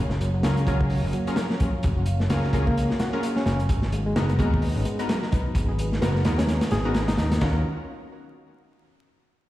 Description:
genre	breakbeat, breaks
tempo	129 BPM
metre	4/4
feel	swing 58% on 16ths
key	Eb minor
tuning	A4 = 440 Hz
part	dark analog pad	sustained chords	0.0-7.6 s	Ab3 to F5	-34 LUFS	right 1 dB	chorus, sidechain pumping
part	picked electric bass	bass	0.0-7.6 s	Gb1 to Eb2	-24 LUFS	equal	tube saturation
part	crunchy breakbeat drum kit	drums	0.1-7.5 s	hi-hat, kick drum, ride cymbal, snare drum	-26 LUFS	equal	none
part	bright reed electric piano	riff	0.2-7.6 s	Eb3 to Ab4	-29 LUFS	equal	overdrive, fast tremolo, tube saturation, vintage 12-bit sampler grit, ping-pong delay
part	orchestra-hit-like synth stab	stabs	0.4-7.6 s	Cb4 to Bb4	-32 LUFS	left 1 dB	built-in reverb, vintage 12-bit sampler grit, ping-pong delay
room	light reverb, small room ambience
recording	played on a big sound system in a bare room, stone room reverb, vinyl crackle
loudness	-21 LUFS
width	side -15 dB against mid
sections	0.0-7.4 A section; 7.4-9.3 B section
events	drop 0.0-7.4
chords	0.0 Gbmaj7; 3.7 Abm7; 7.4 Ebm7

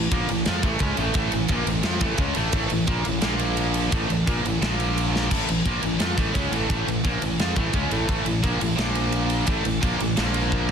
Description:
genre	heavy metal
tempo	173 BPM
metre	4/4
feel	straight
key	unclear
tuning	A4 = 445 Hz
part	heavy high-gain guitar	riff	0.0-10.7 s	A2 to F4	-26 LUFS	right 1 dB	distortion
part	raw garage guitar	riff	0.0-10.7 s	A2 to F4	-29 LUFS	equal	overdrive
part	fuzz fingered electric bass	bass	0.0-10.7 s	A1 to F2	-27 LUFS	equal	overdrive
part	tight metal drum kit	drums	0.1-10.7 s	crash cymbal, kick drum, ride cymbal, snare drum, splash cymbal, toms	-26 LUFS	equal	soft clipping on kick
room	small room ambience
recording	dense, heavily limited modern master, lossy compression artefacts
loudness	-21 LUFS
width	side -7 dB against mid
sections	0.0-10.7 A section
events	half time 0.0-10.7; drum fill 5.1, 10.5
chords	0.0 A; 3.2 Bb5; 3.9 A5; 4.6 Bb5; 5.3 A; 8.8 Bb5; 9.5 A5; 10.2 Bb5

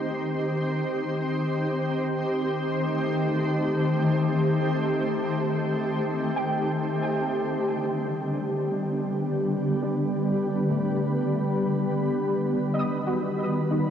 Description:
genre	ambient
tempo	free time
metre	none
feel	none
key	G major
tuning	A4 = 440 Hz
part	shimmering ambient pad	sustained chords	0.0-13.9 s	D3 to C5	-24 LUFS	equal	chorus, built-in reverb
part	soft round pluck	arpeggios	0.0-0.7, 6.4-13.9 s	A3 to D#6	-35 LUFS	equal	ensemble chorus, tape echo
part	analog drone	drone	8.2-13.9 s	G3 to B3	-34 LUFS	left 1 dB	none
room	wet huge ambient reverb, RT60 8.7 s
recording	worn, warbling old tape, cassette tape, warbly pitch drift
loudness	-24 LUFS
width	side -8 dB against mid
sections	0.0-7.2 A section; 7.2-13.9 B section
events	fade-in on synth pluck 7.2-13.9; filter sweep on ambient pad 7.2-13.9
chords	0.0 Eb6; 2.0 Cm6; 7.2 G; 12.4 B

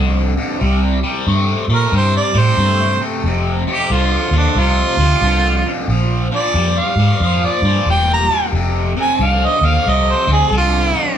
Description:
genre	electric blues shuffle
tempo	91 BPM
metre	4/4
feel	swing 63% on 8ths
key	F mixolydian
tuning	A4 = 440 Hz
part	biting overdriven guitar	riff	0.0-11.2 s	F2 to A3	-19 LUFS	left 2 dB	phaser
part	vintage muted fingered electric bass	bass	0.0-10.9 s	E1 to Bb2	-16 LUFS	equal	none
part	clear harmonica	melody	1.7-11.2 s	D4 to Bb5	-17 LUFS	right 2 dB	overdrive
room	moderate large studio reverb, RT60 1.2 s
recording	band playing live in one room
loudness	-13 LUFS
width	side -9 dB against mid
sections	0.0-3.3 A section; 3.3-11.2 B section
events	harmonica solo 3.3-11.2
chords	0.0 F5; 0.6 C5; 3.3 F5; 5.9 Bb5; 8.5 F5

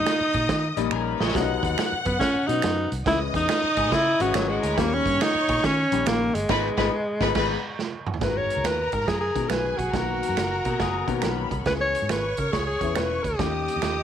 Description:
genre	uptempo 1960s-style soul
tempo	140 BPM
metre	4/4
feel	swing 66% on 8ths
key	G# minor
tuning	A4 = 440 Hz
part	breathy alto saxophone	melody	0.0-14.0 s	F#3 to C#5	-25 LUFS	equal	none
part	clear studio string section	second line	0.0-14.0 s	B3 to F#6	-30 LUFS	left 1 dB	none
part	warm upright piano	accompaniment	0.0-13.9 s	D#3 to G#4	-30 LUFS	left 14 dB	none
part	vintage muted fingered electric bass	bass	0.0-14.0 s	E1 to D#3	-30 LUFS	equal	none
part	vintage drum kit	drums	0.1-14.0 s	crash cymbal, hi-hat, kick drum, snare drum, toms	-29 LUFS	right 5 dB	none
part	finger snap	percussion	0.1-14.0 s	none	-34 LUFS	right 12 dB	none
part	electric guitar through a small old amp	riff	0.8-7.6, 10.6-11.6 s	A#3 to D#5	-32 LUFS	left 12 dB	none
room	light reverb, studio reverb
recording	1960s-style stereo with parts hard left and right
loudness	-22 LUFS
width	side -9 dB against mid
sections	0.0-8.2 A section; 8.2-14.0 B section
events	drum fill 0.9-1.3, 7.8-8.2; band accent 6.5-8.2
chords	0.0 D#; 1.3 B; 3.1 C#m; 4.8 D#7; 6.5 G#m; 8.2 G#m7; 9.9 Bmaj7; 11.7 C#m7; 13.4 D#7

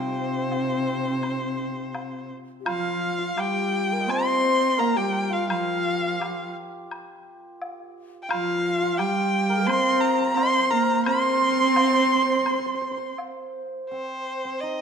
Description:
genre	chinese traditional, Chinese chamber ensemble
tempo	85 BPM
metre	4/4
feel	rubato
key	C yu mode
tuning	A4 = 441 Hz
part	clear erhu	melody	0.0-14.8 s	C5 to C6	-25 LUFS	equal	none
part	breathy low xiao	second line	0.0-13.1 s	C4 to Eb5	-28 LUFS	left 7 dB	none
part	dark cello	second line	0.0-13.2 s	C3 to C4	-27 LUFS	right 5 dB	none
part	hammered dulcimer	second line	0.0-14.8 s	C4 to Eb5	-31 LUFS	right 4 dB	none
part	woodblock	percussion	0.5-13.3 s	none	-34 LUFS	left 3 dB	none
room	moderate scoring stage reverb, RT60 1.7 s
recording	minimal, uncompressed stereo recording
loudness	-21 LUFS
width	side -7 dB against mid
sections	0.0-2.7 A section; 2.7-13.9 B section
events	none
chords	none

